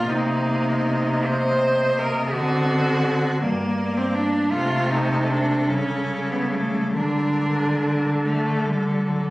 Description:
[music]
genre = classical, lyrical piece for cello ensemble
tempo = 45-56 BPM (dotted quarters)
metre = 6/8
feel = rubato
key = G minor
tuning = A4 = 440 Hz
[part]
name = rich cello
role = melody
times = 0.0-9.2 s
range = A4 to Eb5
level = -32 LUFS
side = left 2 dB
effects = none
[part]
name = rich cello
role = second line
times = 0.0-8.2 s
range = A3 to C5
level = -23 LUFS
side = right 1 dB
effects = none
[part]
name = rich cello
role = accompaniment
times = 0.0-9.3 s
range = F#3 to C4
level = -27 LUFS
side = left 1 dB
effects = none
[part]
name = rich cello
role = bass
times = 0.0-9.2 s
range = G2 to D3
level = -24 LUFS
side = equal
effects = none
[sound]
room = moderate recital hall reverb, RT60 1.5 s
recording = recorded on a phone in the room, club reverb, compression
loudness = -19 LUFS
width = side -19 dB against mid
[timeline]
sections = 0.0-9.3 A section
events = none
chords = 0.1 Cm7; 2.3 D7b9; 3.4 Gm; 4.5 Cm69; 5.7 A7/C#; 7.0 Gm/D; 8.2 D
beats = | 0.07 1.24 | 2.33 3.42 | 4.53 5.69 | 6.98 8.25

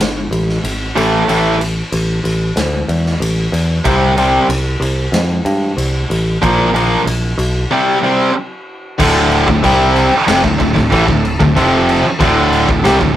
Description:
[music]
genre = hard rock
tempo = 93 BPM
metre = 4/4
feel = straight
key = D minor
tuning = A4 = 440 Hz
[part]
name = picked electric bass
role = bass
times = 0.0-13.2 s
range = D1 to G2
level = -17 LUFS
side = equal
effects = none
[part]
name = raw garage drum kit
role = drums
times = 0.0-13.2 s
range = crash cymbal, kick drum, ride cymbal, snare drum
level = -20 LUFS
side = equal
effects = none
[part]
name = heavy high-gain guitar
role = riff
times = 1.0-13.2 s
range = D2 to C4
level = -14 LUFS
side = right 3 dB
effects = distortion
[part]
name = overdriven electric guitar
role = riff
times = 1.0-13.1 s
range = D2 to C4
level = -15 LUFS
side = left 4 dB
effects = none
[part]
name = overdriven tonewheel organ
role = sustained chords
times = 9.0-13.2 s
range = D4 to E5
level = -27 LUFS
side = equal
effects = none
[part]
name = heavy high-gain guitar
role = riff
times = 9.0-13.2 s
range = D2 to C4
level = -22 LUFS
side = equal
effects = none
[sound]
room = moderate studio reverb, RT60 0.6 s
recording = rough rehearsal-room recording, tube saturation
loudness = -11 LUFS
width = side -12 dB against mid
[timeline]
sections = 0.0-9.0 A section; 9.0-13.2 B section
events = none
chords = 0.0 N.C.; 1.0 A5; 3.9 C5; 6.4 Bb5; 7.7 C5; 9.0 Dm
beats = 0.01 0.65 | 1.29 1.93 2.58 3.22 | 3.86 4.50 5.15 5.79 | 6.43 7.07 7.72 8.36 | 9.00 9.64 10.28 10.92 | 11.56 12.20 12.85

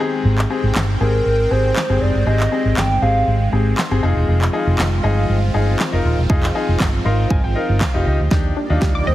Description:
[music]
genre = dance-pop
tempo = 119 BPM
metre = 4/4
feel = straight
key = unclear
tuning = A4 = 440 Hz
[part]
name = clear baby grand piano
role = accompaniment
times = 0.0-9.0 s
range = C4 to C6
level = -22 LUFS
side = left 4 dB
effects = none
[part]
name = supersaw pad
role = sustained chords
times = 0.0-9.1 s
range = Eb3 to G5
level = -26 LUFS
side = right 1 dB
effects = phaser, sidechain pumping
[part]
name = vintage muted fingered electric bass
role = bass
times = 0.2-9.1 s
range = Eb1 to Eb2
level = -17 LUFS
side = right 1 dB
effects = sidechain pumping
[part]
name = pop drum kit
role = drums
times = 0.4-8.9 s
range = handclaps, kick drum, snare drum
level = -21 LUFS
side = equal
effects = none
[part]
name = hollow clarinet-like synth lead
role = melody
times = 1.0-3.5, 9.0-9.1 s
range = Bb4 to G5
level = -20 LUFS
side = right 1 dB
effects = chorus, tape echo
[part]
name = tight sequenced synth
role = arpeggios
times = 8.3-9.1 s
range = Eb3 to D6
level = -25 LUFS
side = right 2 dB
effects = chorus, phaser, sidechain pumping
[part]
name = riser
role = sound effects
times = 8.6-9.1 s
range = none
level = -33 LUFS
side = right 5 dB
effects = none
[sound]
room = light reverb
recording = heavily compressed radio sound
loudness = -15 LUFS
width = side -14 dB against mid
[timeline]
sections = 0.0-8.3 A section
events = grand piano fill 0.0, 3.5-4.3, 6.8-8.3; drum fill 8.3-9.1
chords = 0.0 Abmaj7; 4.0 Fm7; 8.3 Ebmaj7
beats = | 0.25 0.75 1.26 1.76 | 2.26 2.77 3.27 3.78 | 4.28 4.79 5.29 5.79 | 6.30 6.80 7.31 7.81 | 8.31 8.82

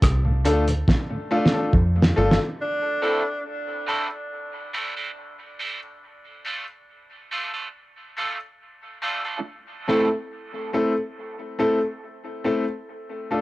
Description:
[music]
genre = dub reggae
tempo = 70 BPM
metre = 4/4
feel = straight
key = A minor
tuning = A4 = 440 Hz
[part]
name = deep dub fingered electric bass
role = bass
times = 0.0-2.4 s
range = G1 to F2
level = -20 LUFS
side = equal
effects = none
[part]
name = cloth-damped thuddy drum kit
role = drums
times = 0.0-2.5 s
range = hi-hat, kick drum, rim click, snare drum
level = -21 LUFS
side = equal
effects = cassette tape
[part]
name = mellow tonewheel organ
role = accompaniment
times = 0.2-2.5 s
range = D2 to F4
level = -28 LUFS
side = equal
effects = slow rotary speaker, high-pass filter, cassette tape
[part]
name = clear upright piano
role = stabs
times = 0.4-13.4 s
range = A3 to A4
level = -25 LUFS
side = left 1 dB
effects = high-pass filter, cassette tape, dub echo
[part]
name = warm tenor saxophone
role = melody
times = 2.6-3.4 s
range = D4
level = -30 LUFS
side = right 1 dB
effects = cassette tape, dub echo
[part]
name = electric guitar at the edge of break-up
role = accompaniment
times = 3.0-10.1 s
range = A3 to A4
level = -30 LUFS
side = right 3 dB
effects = high-pass filter, cassette tape, dub echo
[sound]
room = moderate studio ambience, RT60 0.5 s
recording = home recording on cassette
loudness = -22 LUFS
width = side -18 dB against mid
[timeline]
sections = 0.0-2.6 A section; 2.6-13.4 B section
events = break 0.0-2.6, 2.6-13.4; filter sweep 0.0-9.5; drum fill 0.9-2.6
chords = 0.0 Dm; 2.6 Am; 6.0 Dm; 9.5 Am; 12.9 Dm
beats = 0.02 0.88 1.74 | 2.59 3.45 4.31 5.17 | 6.02 6.88 7.74 8.60 | 9.46 10.31 11.17 12.03 | 12.88

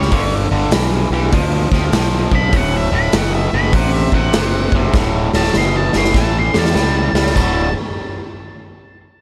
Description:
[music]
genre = blues rock power trio and southern rock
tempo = 100 BPM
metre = 4/4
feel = swing 65% on 8ths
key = D mixolydian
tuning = A4 = 443 Hz
[part]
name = octave-fuzz lead guitar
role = melody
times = 0.0-7.7 s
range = C#5 to C6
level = -25 LUFS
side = equal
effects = distortion, tape echo
[part]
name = biting overdriven guitar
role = riff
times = 0.0-7.7 s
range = D2 to G3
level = -22 LUFS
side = equal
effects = none
[part]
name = fuzz fingered electric bass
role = bass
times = 0.0-7.7 s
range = D1 to E2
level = -21 LUFS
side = equal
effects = overdrive
[part]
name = raw garage drum kit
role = drums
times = 0.0-7.5 s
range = hi-hat, kick drum, snare drum, splash cymbal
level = -20 LUFS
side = equal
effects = none
[sound]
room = little or no reverb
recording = none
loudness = -16 LUFS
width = mono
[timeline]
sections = 0.0-7.4 A section; 7.4-9.2 B section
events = drum fill 5.0-7.4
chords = 0.1 G7; 2.5 D7; 6.2 A7; 7.4 D5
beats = | 0.13 0.73 1.33 1.94 | 2.54 3.14 3.75 4.35 | 4.95 5.55 6.16 6.76 | 7.36

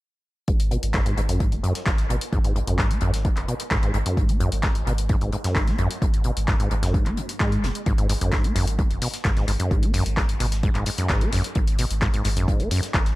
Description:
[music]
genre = acid house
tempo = 130 BPM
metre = 4/4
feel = straight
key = G# minor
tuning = A4 = 439 Hz
[part]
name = acid bass, saw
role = riff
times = 0.5-13.0 s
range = F#2 to B3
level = -26 LUFS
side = equal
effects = tube saturation, tape echo
[part]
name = warm sub bass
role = bass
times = 0.5-13.1 s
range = F#1 to G#2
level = -26 LUFS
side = equal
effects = sidechain pumping
[part]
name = damped 70s drum kit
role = drums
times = 0.5-13.2 s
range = hi-hat, snare drum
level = -40 LUFS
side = left 3 dB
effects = high-pass filter on hats, high-pass filter on snare, high-pass filter on room, analog delay
[part]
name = electronic kick drum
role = drums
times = 0.5-13.0 s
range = none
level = -23 LUFS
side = equal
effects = overdrive
[part]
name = punchy analog drum machine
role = drums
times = 0.6-13.2 s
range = handclaps, hi-hat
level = -30 LUFS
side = left 1 dB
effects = analog delay
[sound]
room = little or no reverb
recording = echo-heavy mix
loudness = -20 LUFS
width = side -19 dB against mid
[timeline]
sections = 0.5-13.2 A section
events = filter sweep on acid bass 0.5-13.2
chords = 0.5 G#7(no3)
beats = | 0.48 0.94 1.40 1.86 | 2.33 2.79 3.25 3.71 | 4.17 4.63 5.10 5.56 | 6.02 6.48 6.94 7.40 | 7.87 8.33 8.79 9.25 | 9.71 10.17 10.63 11.10 | 11.56 12.02 12.48 12.94

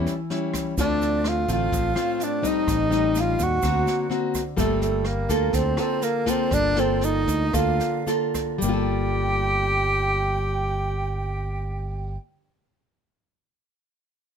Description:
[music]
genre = bossa nova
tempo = 107-126 BPM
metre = 4/4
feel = straight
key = G minor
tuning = A4 = 440 Hz
[part]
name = nylon-string guitar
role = accompaniment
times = 0.0-12.3 s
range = A2 to A4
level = -26 LUFS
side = left 2 dB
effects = none
[part]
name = modern bright fingered electric bass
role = bass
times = 0.0-12.2 s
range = G1 to Eb2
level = -26 LUFS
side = right 1 dB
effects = none
[part]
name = jazz brush drum kit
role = drums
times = 0.1-8.5 s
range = kick drum, rim click, snare drum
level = -32 LUFS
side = equal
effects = none
[part]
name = egg shaker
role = percussion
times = 0.1-8.8 s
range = none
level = -36 LUFS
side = right 11 dB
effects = none
[part]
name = mellow tenor saxophone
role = melody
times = 0.8-12.2 s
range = A3 to G4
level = -25 LUFS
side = equal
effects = none
[part]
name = breathy concert flute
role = second line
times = 0.8-12.2 s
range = A4 to G5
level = -33 LUFS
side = right 7 dB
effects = none
[sound]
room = little or no reverb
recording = close, detailed microphones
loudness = -21 LUFS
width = side -7 dB against mid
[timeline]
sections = 0.0-8.6 A section; 8.6-13.1 B section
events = slowing down 4.6-8.6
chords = 0.0 A7 (rootless); 0.8 Dm7; 2.7 Am7b5; 3.6 D7b13; 4.6 Gm9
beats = 0.30 | 0.78 1.25 1.73 2.20 | 2.68 3.15 3.63 4.10 | 4.58 5.06 5.54 6.02 | 6.52 7.03 7.54 8.08 | 8.63 9.19 9.75 10.31 | 10.87 11.43 11.99

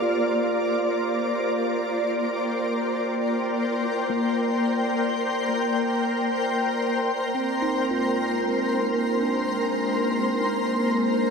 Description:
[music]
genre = ambient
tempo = free time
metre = none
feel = none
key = Bb mixolydian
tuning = A4 = 440 Hz
[part]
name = shimmering ambient pad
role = sustained chords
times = 0.0-11.3 s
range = Ab3 to G5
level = -24 LUFS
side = left 1 dB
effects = chorus, built-in reverb
[part]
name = muted felt-like synth keys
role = arpeggios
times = 0.0-11.3 s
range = Bb3 to F4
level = -29 LUFS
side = right 1 dB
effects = chorus, tape echo
[part]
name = overtone-sweeping drone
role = drone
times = 7.8-11.3 s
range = Bb3 to Bb4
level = -28 LUFS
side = left 1 dB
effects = chorus, built-in reverb
[sound]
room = wet huge ambient reverb, RT60 7.8 s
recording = dark, warm production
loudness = -22 LUFS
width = side -5 dB against mid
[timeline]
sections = 0.0-11.3 A section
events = fade-out on synth keys 0.0-11.3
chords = 0.0 Bbadd9; 7.3 Abadd9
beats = free time

